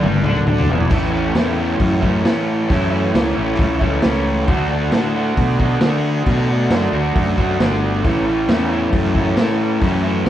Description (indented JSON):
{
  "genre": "garage rock duo or trio",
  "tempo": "135 BPM",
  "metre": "4/4",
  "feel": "straight",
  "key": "A major",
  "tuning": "A4 = 441 Hz",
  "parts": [
    { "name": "raw garage guitar", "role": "riff", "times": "0.0-10.3 s", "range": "E2 to F#4", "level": "-18 LUFS", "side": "equal", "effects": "overdrive" },
    { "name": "fuzz fingered electric bass", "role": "bass", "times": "0.0-10.3 s", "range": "E1 to D3", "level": "-20 LUFS", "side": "equal", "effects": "overdrive" },
    { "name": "raw garage drum kit", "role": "drums", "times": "0.0-10.3 s", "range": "crash cymbal, hi-hat, kick drum, snare drum, toms", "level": "-20 LUFS", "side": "equal", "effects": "none" }
  ],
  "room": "moderate large studio reverb, RT60 1.2 s",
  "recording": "band playing live in one room, cassette tape",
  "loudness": "-15 LUFS",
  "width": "side -12 dB against mid",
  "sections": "0.9-10.3 A section",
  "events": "drum fill 0.0-0.9",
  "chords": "0.0 Em7; 0.9 A; 4.5 D; 8.0 A"
}